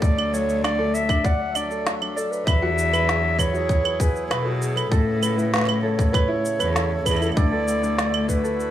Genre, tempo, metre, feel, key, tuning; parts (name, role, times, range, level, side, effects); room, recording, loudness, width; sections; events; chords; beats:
folktronica; 98 BPM; 4/4; straight; D lydian; A4 = 442 Hz
dark clarinet; melody; 0.0-8.7 s; G#4 to F#5; -25 LUFS; equal; digital delay
hand-pumped harmonium; sustained chords; 0.0-8.7 s; C#3 to A4; -32 LUFS; equal
warm cello; bass; 0.0-8.7 s; D2 to B2; -25 LUFS; left 1 dB
electronic cabasa, claves and snare drum; drums; 0.0-8.7 s; -27 LUFS; right 2 dB
electronic kick drum; drums; 0.0-8.4 s; -20 LUFS; equal
tenor ukulele; arpeggios; 0.2-8.6 s; D4 to D5; -28 LUFS; equal; low-pass filter, digital delay
light reverb, small room reverb; small room ambience; -19 LUFS; side -12 dB against mid
0.0-7.4 A section; 7.4-8.7 A section
0.0 D; 2.5 Eadd9; 4.9 Aadd9; 7.4 D
| 0.02 0.64 1.25 1.86 | 2.47 3.08 3.70 4.31 | 4.92 5.53 6.15 6.76 | 7.37 7.98 8.60